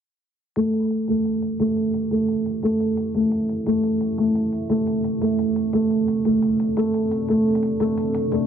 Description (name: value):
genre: half-time drum and bass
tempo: 174 BPM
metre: 4/4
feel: swing 56% on 16ths, half-time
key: A minor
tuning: A4 = 440 Hz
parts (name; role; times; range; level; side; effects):
- deep dark ambient pad; sustained chords; 3.1-8.5 s; C4 to E5; -27 LUFS; right 5 dB; chorus, built-in reverb
- felt-muted upright piano; arpeggios; 0.6-8.5 s; A3; -20 LUFS; equal; vintage 12-bit sampler grit, low-pass filter, digital delay
- electronic hi-hat; drums; 0.6-8.4 s; none; -50 LUFS; left 2 dB; low-pass filter on hats, low-pass filter on room
room: moderate echo chamber reverb, RT60 1.7 s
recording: low-pass filter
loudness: -19 LUFS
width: side -8 dB against mid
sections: 0.6-8.5 A section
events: filter sweep on ambient pad 0.6-8.5; filter sweep on felt piano 0.6-8.5; filter sweep 0.6-8.5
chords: 0.6 Am